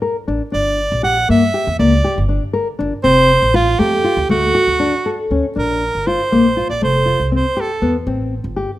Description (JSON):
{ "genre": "contemporary instrumental, chamber music in an uneven meter", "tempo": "239 BPM (eighths)", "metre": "5/8", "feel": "straight", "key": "unclear", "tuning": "A4 = 439 Hz", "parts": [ { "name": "nylon-string guitar", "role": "arpeggios", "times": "0.0-8.7 s", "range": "A3 to Bb4", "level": "-18 LUFS", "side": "left 3 dB", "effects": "none" }, { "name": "upright bass", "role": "bass", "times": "0.3-8.6 s", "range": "F1 to G2", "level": "-20 LUFS", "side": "equal", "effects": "none" }, { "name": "bright soprano saxophone", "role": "melody", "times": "0.5-8.0 s", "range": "F4 to F#5", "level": "-16 LUFS", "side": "right 2 dB", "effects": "none" } ], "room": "little or no reverb", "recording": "close, detailed microphones", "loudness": "-13 LUFS", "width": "side -15 dB against mid", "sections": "0.0-5.6 A section; 5.6-8.8 B section", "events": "none", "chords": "0.0 Bb; 0.5 Gm; 3.0 Fadd9; 4.3 D; 5.6 Bbadd9; 6.8 Fadd9; 8.1 Am7", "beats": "0.03 0.28 | 0.54 0.79 1.04 1.29 1.54 | 1.79 2.04 2.29 2.54 2.79 | 3.04 3.29 3.54 3.79 4.05 | 4.30 4.55 4.80 5.06 5.31 | 5.57 5.82 6.07 6.33 6.58 | 6.83 7.07 7.32 7.57 7.82 | 8.07 8.32 8.57" }